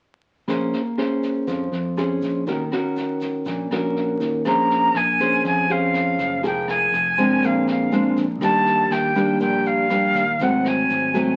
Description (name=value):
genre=bossa nova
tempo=121 BPM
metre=4/4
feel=straight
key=Bb minor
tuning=A4 = 439 Hz
part: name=nylon-string guitar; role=accompaniment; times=0.5-11.4 s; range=Ab2 to C5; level=-24 LUFS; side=equal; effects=none
part: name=modern bright fingered electric bass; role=bass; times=0.5-11.4 s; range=F1 to F2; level=-31 LUFS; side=equal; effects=none
part: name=jazz brush drum kit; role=drums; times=0.5-11.2 s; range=kick drum, rim click, snare drum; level=-38 LUFS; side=equal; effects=none
part: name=egg shaker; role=percussion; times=0.5-11.4 s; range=none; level=-57 LUFS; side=equal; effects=none
part: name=breathy bright jazz flute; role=melody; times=4.5-11.4 s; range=F5 to Bb5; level=-22 LUFS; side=equal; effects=none
room=moderate studio reverb, RT60 0.7 s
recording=very old 78 rpm record, vinyl crackle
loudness=-21 LUFS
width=mono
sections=0.5-4.5 A section; 4.5-11.4 B section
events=none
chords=0.5 Bbm9; 2.5 Ebm7; 4.5 Bbm9; 6.4 Fm7; 7.4 Bb9; 8.4 Ebmaj7; 10.4 Ab7b9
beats=| 0.48 0.98 1.48 1.97 | 2.47 2.96 3.46 3.96 | 4.45 4.95 5.44 5.94 | 6.43 6.93 7.42 7.92 | 8.41 8.91 9.40 9.90 | 10.40 10.89